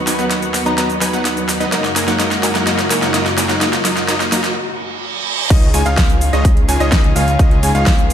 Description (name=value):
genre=EDM, festival progressive house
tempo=127 BPM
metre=4/4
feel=straight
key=F# major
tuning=A4 = 440 Hz
part: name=dark studio string section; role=sustained chords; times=0.0-8.1 s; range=D#2 to G#4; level=-23 LUFS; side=equal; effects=sidechain pumping
part: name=supersaw stab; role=riff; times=0.0-8.1 s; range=F#3 to G#5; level=-19 LUFS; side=equal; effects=cassette tape, sidechain pumping, ping-pong delay
part: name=riser and reverse cymbal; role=sound effects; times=0.5-5.5 s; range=none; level=-24 LUFS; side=right 2 dB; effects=none
part: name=big-room dance drum kit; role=drums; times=0.1-8.1 s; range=cabasa, crash cymbal, hi-hat, snare drum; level=-19 LUFS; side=equal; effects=overdrive, high-pass filter on snare, small room ambience, high-pass filter on hats, high-pass filter on perc, high-pass filter on cymbals
part: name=soft synth bell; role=melody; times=0.7-0.9 s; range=A#5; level=-28 LUFS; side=left 2 dB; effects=chorus, phaser, ping-pong delay
part: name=warm baby grand piano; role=arpeggios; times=5.5-8.1 s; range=D#5 to G#5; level=-21 LUFS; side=left 1 dB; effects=sidechain pumping, ping-pong delay
part: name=wide detuned saw bass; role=bass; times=5.5-8.1 s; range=C#2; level=-17 LUFS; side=equal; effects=chorus, tube saturation, sidechain pumping
part: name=electronic kick drum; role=drums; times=5.5-8.0 s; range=none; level=-13 LUFS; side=equal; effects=small room ambience
room=moderate lush hall reverb, RT60 2.1 s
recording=none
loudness=-13 LUFS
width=side -9 dB against mid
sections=0.0-5.5 A section; 5.5-8.1 B section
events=build-up 0.0-5.5; drum fill 0.0-4.6; break 4.6-5.5; reverse cymbal 4.6-5.5; drop 5.5-8.1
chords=0.0 B/D#; 1.7 F#add9; 5.5 C#add9